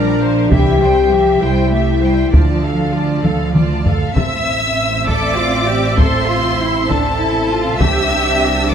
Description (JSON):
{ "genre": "cinematic, epic orchestral film score", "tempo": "66 BPM (dotted quarters)", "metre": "6/8", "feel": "straight", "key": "D minor, A minor from 4.2 s", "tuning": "A4 = 440 Hz", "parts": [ { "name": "rich studio violin section", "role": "melody", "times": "0.0-8.7 s", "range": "E5 to E6", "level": "-22 LUFS", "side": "left 3 dB", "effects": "none" }, { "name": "rich symphonic violin section", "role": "second line", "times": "0.0-8.7 s", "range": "A4 to G5", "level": "-22 LUFS", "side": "left 1 dB", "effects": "none" }, { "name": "rich symphonic viola section", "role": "accompaniment", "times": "0.0-8.7 s", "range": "C4 to E5", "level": "-23 LUFS", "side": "right 3 dB", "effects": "none" }, { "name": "mellow French horn section", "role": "sustained chords", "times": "0.0-8.7 s", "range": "C3 to G4", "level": "-19 LUFS", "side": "left 4 dB", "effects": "none" }, { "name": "rich symphonic double bass section", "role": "bass", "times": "0.0-8.7 s", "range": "A1 to D2", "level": "-20 LUFS", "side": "right 3 dB", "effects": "none" }, { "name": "warm symphonic cello section", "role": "bass", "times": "0.0-8.7 s", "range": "E3 to A4", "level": "-21 LUFS", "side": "right 2 dB", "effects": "none" }, { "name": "taiko ensemble", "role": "drums", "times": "0.5-8.7 s", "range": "none", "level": "-16 LUFS", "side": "equal", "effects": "none" } ], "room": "wet scoring stage reverb, RT60 1.5 s", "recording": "none", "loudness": "-12 LUFS", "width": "side -8 dB against mid", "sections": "0.0-4.2 A section; 4.2-8.7 B section", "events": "drum fill 3.2-4.2", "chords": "0.0 Bbadd9; 0.5 C; 2.3 Dm; 4.2 Am; 7.8 Cadd9", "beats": "| 0.51 1.42 | 2.33 3.24 | 4.15 5.06 | 5.97 6.88 | 7.79 8.71" }